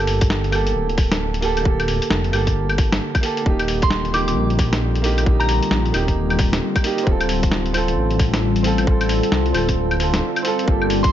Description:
future garage; 133 BPM; 4/4; swing 62% on 16ths; A4 = 440 Hz
warm upright piano; accompaniment; 0.0-11.1 s; Bb3 to A4; -23 LUFS; right 4 dB; sidechain pumping, tape echo
warbly tape-like pad; sustained chords; 0.8-11.1 s; D3 to A4; -26 LUFS; left 2 dB; chorus, built-in reverb, sidechain pumping
dark detuned saw bass; bass; 0.0-11.1 s; D1 to C2; -22 LUFS; equal; sidechain pumping
lo-fi sampler-style drum kit; drums; 0.1-11.1 s; claves, hi-hat, snare drum; -23 LUFS; left 1 dB
electronic kick drum; drums; 0.2-11.1 s; -19 LUFS; equal; overdrive
soft synth bell; melody; 3.8-5.7, 11.0-11.1 s; Bb5 to D6; -26 LUFS; equal; chorus, analog delay
light reverb; nothing above 7.5 kHz; -16 LUFS; side -11 dB against mid
0.0-10.7 A section
break 9.8-10.7
0.0 Gmadd9; 3.5 Eb; 7.1 Dm7
0.30 0.75 1.20 | 1.65 2.10 2.56 3.01 | 3.46 3.91 4.36 4.81 | 5.26 5.71 6.16 6.62 | 7.07 7.52 7.97 8.42 | 8.87 9.32 9.77 10.22 | 10.68

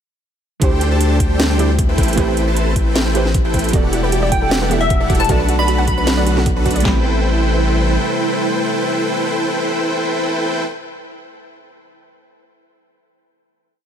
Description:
future bass; 154 BPM; 4/4; half-time; A dorian; A4 = 440 Hz
soft round pluck; accompaniment; 0.6-10.7 s; B2 to B5; -25 LUFS; right 5 dB; chorus, sidechain pumping, ping-pong delay
airy breathy pad; sustained chords; 1.1-10.6 s; C3 to F#5; -25 LUFS; equal; chorus, sidechain pumping
dense compressed supersaw; riff; 0.6-10.6 s; D4 to A5; -19 LUFS; equal; cassette tape, sidechain pumping, ping-pong delay
saturated sub bass; bass; 0.6-8.0 s; E1 to D2; -18 LUFS; equal; sidechain pumping
dubstep drum kit; drums; 0.6-6.9 s; kick drum, snare drum; -17 LUFS; equal
trap drum kit; drums; 0.6-6.9 s; hi-hat, snare drum; -22 LUFS; equal; overdrive
soft round pluck; arpeggios; 3.7-7.0 s; F#4 to F#5; -26 LUFS; right 3 dB; chorus, sidechain pumping, ping-pong delay
glassy wavetable pluck; melody; 4.3-6.0 s; E5 to B5; -22 LUFS; left 1 dB; chorus, sidechain pumping, ping-pong delay
digital ambience; -14 LUFS; side -8 dB against mid
0.6-6.8 drop; 6.8-10.0 final chord
drop 0.6-6.8
0.6 D7sus4; 2.0 Am9; 3.7 Em11; 5.3 Bm7; 6.8 Am9
| 0.62 1.01 1.40 1.78 | 2.17 2.56 2.95 3.34 | 3.73 4.12 4.51 4.90 | 5.29 5.68 6.07 6.46 | 6.85 7.24 7.63 8.02 | 8.41 8.80 9.19 9.58

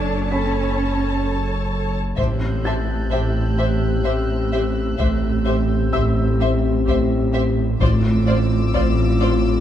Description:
cinematic, suspense film score; 64 BPM; 3/4; straight; A minor; A4 = 440 Hz
rich studio violin section; melody; 0.0-9.3 s; D5 to A5; -30 LUFS; left 4 dB
rich studio viola section; accompaniment; 0.0-9.3 s; F4 to C#5; -31 LUFS; right 1 dB
clear studio double bass section; bass; 0.0-9.6 s; F#1 to A1; -24 LUFS; right 2 dB
warm studio cello section; bass; 0.0-9.6 s; A2 to D4; -25 LUFS; right 4 dB
sub bass with octave; drone; 0.0-9.6 s; F#1 to A1; -23 LUFS; left 1 dB
felt-muted upright piano; texture; 0.0-9.6 s; E5 to B6; -35 LUFS; left 1 dB
rich studio violin section; second line; 2.2-9.3 s; C5; -30 LUFS; left 2 dB
dark French horn section; sustained chords; 2.2-9.6 s; C4 to G4; -24 LUFS; left 4 dB
taiko ensemble; drums; 2.2-9.6 s; -26 LUFS; left 1 dB
timpani; percussion; 2.2-3.5, 7.8-9.2 s; A2; -27 LUFS; equal
rich studio violin section; texture; 2.2-9.6 s; D6 to G6; -34 LUFS; left 2 dB
moderate scoring stage reverb, RT60 1.9 s; dark, warm production; -17 LUFS; side -10 dB against mid
0.0-2.2 A section; 2.2-9.6 B section
0.0 Aadd9/F#; 2.2 Am7; 7.8 Dm7/A
0.31 1.24 | 2.18 3.12 4.06 | 4.99 5.93 6.87 | 7.81 8.74

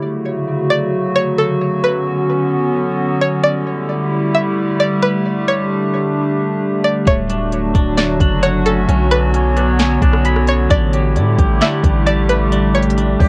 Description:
hip hop, atmospheric cloud-rap; 132 BPM; 4/4; half-time; A4 = 440 Hz
string-like resonator pluck; melody; 0.0-13.3 s; A4 to E5; -21 LUFS; equal; chorus, cassette tape, analog delay
warbly tape-like pad; sustained chords; 0.0-13.3 s; C#3 to C#5; -19 LUFS; equal; chorus, built-in reverb, sidechain pumping, cassette tape
twangy electric guitar; arpeggios; 7.1-13.3 s; A3 to B5; -26 LUFS; equal; cassette tape, analog delay
long sustained 808-style bass; bass; 7.1-13.3 s; D1 to A2; -19 LUFS; equal
smooth R&B drum kit; drums; 7.1-13.3 s; hi-hat, kick drum, rim click, snare drum; -18 LUFS; equal; overdrive, cassette tape
light reverb; home recording on cassette; -16 LUFS; mono
0.0-13.3 A section
0.0 Dmaj7; 1.6 Bmadd9; 3.4 A7sus4; 7.1 Dmaj7; 8.9 Bmadd9; 10.7 A7sus4
0.25 0.70 1.16 | 1.61 2.07 2.52 2.98 | 3.43 3.89 4.34 4.79 | 5.25 5.70 6.16 6.61 | 7.07 7.52 7.98 8.43 | 8.89 9.34 9.79 10.25 | 10.70 11.16 11.61 12.07 | 12.52 12.98

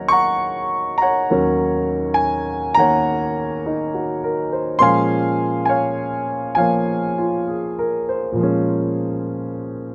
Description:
solo jazz; 68 BPM; 4/4; swing 66% on 8ths, rubato; Bb minor; A4 = 440 Hz
warm grand piano; solo; 0.0-9.9 s; Eb2 to Db6; -20 LUFS; equal
light reverb; -20 LUFS; mono
0.0-9.9 A section
0.0 Ebm7; 4.8 Bbm7
0.40 | 1.30 2.18 3.06 3.94 | 4.81 5.69 6.58 7.48 | 8.37 9.28

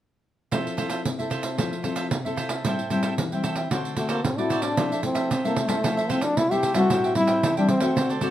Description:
samba and choro; 113 BPM; 4/4; straight; F major; A4 = 440 Hz
cavaquinho; accompaniment; 0.5-8.3 s; F4 to G5; -30 LUFS; right 4 dB
nylon-string guitar; accompaniment; 0.5-8.3 s; A2 to A4; -27 LUFS; left 4 dB
pandeiro; percussion; 0.5-8.3 s; -28 LUFS; right 3 dB
warm trombone; melody; 4.0-8.2 s; A3 to G4; -24 LUFS; left 1 dB
moderate studio reverb, RT60 0.6 s; -22 LUFS; side -12 dB against mid
0.5-4.8 A section; 4.8-8.3 B section
0.5 Fmaj7; 2.6 Am7; 3.7 D7; 4.8 Fmaj7; 6.9 Am7
| 0.52 1.05 1.58 2.12 | 2.65 3.18 3.71 4.24 | 4.78 5.31 5.84 6.37 | 6.90 7.43 7.96

